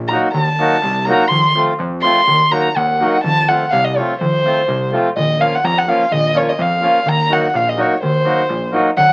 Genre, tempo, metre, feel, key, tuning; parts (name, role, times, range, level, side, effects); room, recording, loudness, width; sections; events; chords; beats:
balkan folk, Balkan wedding band; 125 BPM; 2/4; straight; Eb dorian sharp4; A4 = 439 Hz
fat analog bass; bass; 0.0-9.1 s; Bb1 to Gb2; -26 LUFS; equal
dark violin; melody; 0.1-9.1 s; C5 to C6; -18 LUFS; equal
accordion; accompaniment; 0.1-8.9 s; F3 to Gb4; -20 LUFS; equal
darbuka; percussion; 0.1-9.1 s; -25 LUFS; equal
moderate club reverb, RT60 0.6 s; very old 78 rpm record, vinyl crackle; -15 LUFS; mono
0.0-3.2 A section; 3.2-9.1 B section
violin solo 0.0-3.2
0.0 Ebm; 1.3 F; 2.3 Ebm; 3.2 F; 5.2 Bbm; 7.1 Ebm
| 0.35 0.83 | 1.31 1.79 | 2.27 2.75 | 3.23 3.72 | 4.20 4.67 | 5.15 5.63 | 6.11 6.59 | 7.07 7.54 | 8.02 8.49 | 8.97